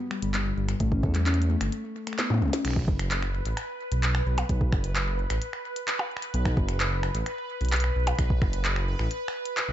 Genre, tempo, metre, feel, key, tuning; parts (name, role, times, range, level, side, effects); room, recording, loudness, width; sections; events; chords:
IDM; 130 BPM; 4/4; straight; A4 = 440 Hz
harp-like synth pluck; arpeggios; 0.0-2.6 s; G2 to A4; -31 LUFS; left 4 dB; chorus, ping-pong delay
glitchy drum kit; drums; 0.1-9.7 s; crash cymbal, finger snaps, handclaps, hi-hat, percussion blips, snare drum, toms; -31 LUFS; equal; ping-pong delay
dark detuned saw bass; bass; 0.2-9.7 s; F#1 to A2; -26 LUFS; equal
electronic kick drum; drums; 0.8-8.5 s; -26 LUFS; equal
bubbling stepped-filter texture; texture; 3.0-9.7 s; B4; -34 LUFS; right 1 dB; chorus, built-in reverb
light reverb; nothing above 7.8 kHz; -24 LUFS; side -12 dB against mid
0.0-2.6 A section; 2.6-9.7 B section
drum fill 2.2-2.6
0.0 N.C.; 0.8 A; 2.6 B5